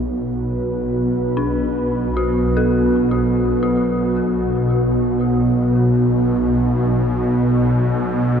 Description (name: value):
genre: dark ambient drone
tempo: free time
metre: none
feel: none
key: unclear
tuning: A4 = 436 Hz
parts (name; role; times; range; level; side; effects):
- deep dark ambient pad; sustained chords; 0.0-8.4 s; B3 to B4; -19 LUFS; right 1 dB; chorus, built-in reverb
- swarming drone; drone; 0.0-8.4 s; B1 to B2; -19 LUFS; equal; built-in reverb
- dark detuned synth bell; arpeggios; 1.4-8.4 s; D4 to A4; -27 LUFS; left 3 dB; chorus, diffuse ambient delay
room: wet huge ambient reverb, RT60 8.2 s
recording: dark, warm production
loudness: -16 LUFS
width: side -7 dB against mid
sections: 0.0-8.4 A section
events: none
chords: 0.0 Bm